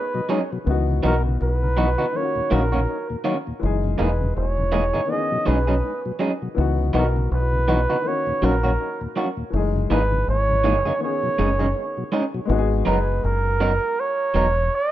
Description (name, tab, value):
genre	reggae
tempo	81 BPM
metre	4/4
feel	swing 58% on 16ths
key	C# dorian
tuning	A4 = 440 Hz
part	breathy flugelhorn	melody	0.0-14.9 s	A#4 to D#5	-24 LUFS	right 3 dB	tape echo, plate reverb
part	dark baby grand piano	accompaniment	0.0-14.9 s	D#3 to G#4	-29 LUFS	left 7 dB	dub echo, plate reverb
part	mellow tonewheel organ	accompaniment	0.1-12.4 s	D#2 to D#4	-29 LUFS	left 3 dB	slow rotary speaker, dub echo, plate reverb
part	electric guitar through a small old amp	stabs	0.3-14.5 s	D#3 to A#4	-25 LUFS	right 3 dB	plate reverb
part	deep dub fingered electric bass	bass	0.7-14.7 s	E1 to C#2	-21 LUFS	equal	none
room	light reverb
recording	rough home demo mix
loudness	-19 LUFS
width	side -13 dB against mid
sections	0.7-12.5 A section; 12.5-14.9 B section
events	none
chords	0.0 B69; 0.7 C#m11; 2.1 D#m7; 3.6 F#13; 5.1 B69; 6.6 C#m11; 8.1 D#m7; 9.5 F#13; 11.0 B69; 12.5 G#m9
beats	| 0.67 1.40 2.14 2.88 | 3.62 4.36 5.09 5.83 | 6.57 7.31 8.05 8.79 | 9.53 10.27 11.01 11.75 | 12.49 13.23 13.97 14.71